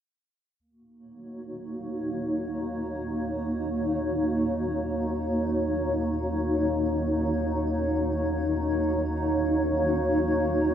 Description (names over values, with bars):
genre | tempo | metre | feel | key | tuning
ambient | free time | none | none | Eb minor | A4 = 440 Hz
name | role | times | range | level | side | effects
granular cloud pad | sustained chords | 1.3-10.7 s | Bb3 to Db5 | -25 LUFS | equal | built-in reverb
warm sub bass | bass | 0.6-10.7 s | Eb2 | -34 LUFS | equal | none
room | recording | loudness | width
wet huge ambient reverb, RT60 8.8 s | dark, warm production | -25 LUFS | side -9 dB against mid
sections
0.6-10.7 A section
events
fade-in on sub bass 0.6-10.7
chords
0.6 Ebm7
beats
free time